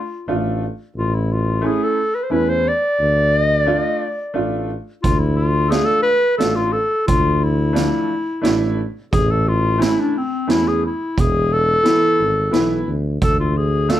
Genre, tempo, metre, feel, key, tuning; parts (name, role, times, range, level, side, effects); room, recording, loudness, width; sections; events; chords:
klezmer; 88 BPM; 3/4; straight; D dorian sharp4; A4 = 439 Hz
warm clarinet; melody; 0.0-14.0 s; C4 to D5; -18 LUFS; left 1 dB; plate reverb
clear upright piano; accompaniment; 0.3-14.0 s; E3 to F4; -21 LUFS; right 2 dB
mellow tuba; bass; 0.3-14.0 s; E1 to E2; -20 LUFS; equal
street-band drum kit; drums; 5.0-14.0 s; hi-hat, kick drum, snare drum; -22 LUFS; right 2 dB
moderate small room reverb, RT60 0.5 s; -16 LUFS; side -12 dB against mid
0.0-5.0 A section; 5.0-14.0 A section
0.0 Dm; 1.0 A; 3.0 Dm; 9.1 A; 11.2 E; 13.2 Dm